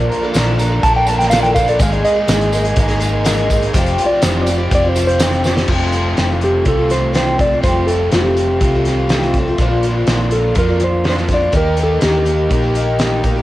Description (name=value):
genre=folk rock and heartland rock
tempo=123 BPM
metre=4/4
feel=straight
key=F mixolydian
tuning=A4 = 440 Hz
part: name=picked twelve-string acoustic guitar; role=accompaniment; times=0.0-13.4 s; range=F2 to A4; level=-21 LUFS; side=left 2 dB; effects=lush chorus, cassette tape
part: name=tonewheel organ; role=sustained chords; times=0.0-13.4 s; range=Bb3 to C5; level=-31 LUFS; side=equal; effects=none
part: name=overdriven electric guitar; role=riff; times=0.0-13.4 s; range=F2 to Bb4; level=-22 LUFS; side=right 2 dB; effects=cassette tape
part: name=hollow-body short-scale fingered electric bass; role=bass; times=0.0-13.4 s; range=F1 to F2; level=-18 LUFS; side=equal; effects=none
part: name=loose indie drum kit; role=drums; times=0.1-13.3 s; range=crash cymbal, hi-hat, kick drum, snare drum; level=-19 LUFS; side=equal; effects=cassette tape
part: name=tambourine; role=percussion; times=0.3-5.6 s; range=none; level=-31 LUFS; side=right 5 dB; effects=none
part: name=mellow electric guitar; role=melody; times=0.8-13.2 s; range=G4 to A5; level=-17 LUFS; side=equal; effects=cassette tape
room=small room ambience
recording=home recording on cassette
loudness=-12 LUFS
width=side -15 dB against mid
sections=0.0-5.7 A section; 5.7-13.4 B section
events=clean electric guitar solo 0.0-5.7; drum fill 5.4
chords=0.0 Bbmaj7; 1.8 Absus2; 3.7 Fsus2; 5.7 Fadd9; 9.6 Bbadd9; 11.5 Eb